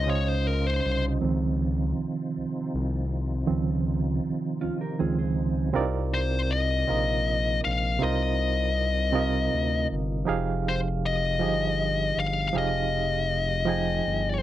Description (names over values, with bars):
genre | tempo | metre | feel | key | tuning
R&B | 53 BPM (dotted quarters) | 6/8 | straight | C minor | A4 = 439 Hz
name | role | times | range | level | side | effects
fuzz lead guitar | melody | 0.0-1.0, 6.1-14.4 s | Bb4 to F5 | -27 LUFS | left 4 dB | distortion, slapback echo
barky reed electric piano | accompaniment | 0.0-14.4 s | C3 to Ab5 | -28 LUFS | right 6 dB | overdrive, fast tremolo
tonewheel organ | sustained chords | 0.0-5.7 s | C3 to C5 | -35 LUFS | left 1 dB | chorus vibrato, slow rotary speaker
smooth synth bass | bass | 0.0-14.4 s | F1 to D2 | -28 LUFS | left 1 dB | none
mellow electric guitar | second line | 4.6-5.7 s | Db4 to C5 | -35 LUFS | right 2 dB | none
room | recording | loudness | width
light reverb | dry, close 1970s-style studio recording | -24 LUFS | side -13 dB against mid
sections
0.0-1.2 A section; 1.2-5.7 B section; 5.7-14.4 C section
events
lead electric guitar solo 0.0-1.2; reed electric piano solo 1.2-5.7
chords
0.0 Dbmaj9; 5.7 Cm11; 10.3 Fm9